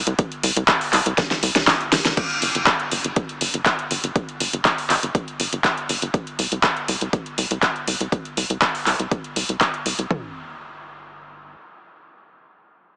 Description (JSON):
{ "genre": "progressive house", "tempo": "121 BPM", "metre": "4/4", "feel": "straight", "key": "unclear", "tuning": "A4 = 440 Hz", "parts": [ { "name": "tight sequencer bass", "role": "bass", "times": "0.0-11.6 s", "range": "G1 to C2", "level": "-25 LUFS", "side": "equal", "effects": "sidechain pumping" }, { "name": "deep house drum kit", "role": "drums", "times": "0.1-10.1 s", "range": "crash cymbal, handclaps, hi-hat, snare drum", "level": "-20 LUFS", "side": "equal", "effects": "overdrive" }, { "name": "deep house drum kit", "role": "drums", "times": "0.2-10.2 s", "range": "kick drum, toms", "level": "-25 LUFS", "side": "equal", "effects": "overdrive" } ], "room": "light reverb, digital ambience", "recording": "heavily compressed radio sound, multiband compression, small speaker sound", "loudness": "-19 LUFS", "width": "side -31 dB against mid", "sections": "0.0-2.2 A section; 2.2-10.1 B section; 10.1-13.0 C section", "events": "drop 0.0-2.2; drum fill 1.2-2.2", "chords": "none" }